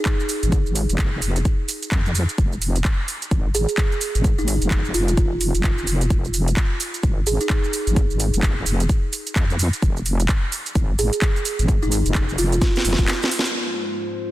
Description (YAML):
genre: bass house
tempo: 129 BPM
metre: 4/4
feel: swing 60% on 16ths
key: F minor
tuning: A4 = 440 Hz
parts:
  - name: buzzing kalimba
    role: melody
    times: 0.0-0.1, 3.5-7.6, 11.0-12.6 s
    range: Eb4 to Ab4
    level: -27 LUFS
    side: right 2 dB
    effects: dub echo
  - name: electronic kick drum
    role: drums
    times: 0.1-13.1 s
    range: none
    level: -20 LUFS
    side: equal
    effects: none
  - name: house drum kit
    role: drums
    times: 0.1-14.3 s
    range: handclaps, hi-hat, shaker, snare drum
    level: -25 LUFS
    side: right 1 dB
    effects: low-pass filter on snare, low-pass filter on hats, low-pass filter on perc, low-pass filter on room
  - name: wobble bass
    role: bass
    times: 0.4-13.1 s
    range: Eb1 to F2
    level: -21 LUFS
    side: equal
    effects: chorus, sidechain pumping
  - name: dark analog pad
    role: sustained chords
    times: 13.5-14.3 s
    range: Ab3 to C5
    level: -32 LUFS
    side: right 1 dB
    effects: chorus, sidechain pumping
  - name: warbly tape-like pad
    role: texture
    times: 13.7-14.3 s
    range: F4 to C5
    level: -31 LUFS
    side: left 5 dB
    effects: chorus, built-in reverb, phaser, sidechain pumping
room: little or no reverb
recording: dense, heavily limited modern master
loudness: -18 LUFS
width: side -15 dB against mid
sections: 0.0-13.5 A section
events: drum fill 12.6-13.5; break 13.1-13.5; band accent 13.4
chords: 0.0 Fm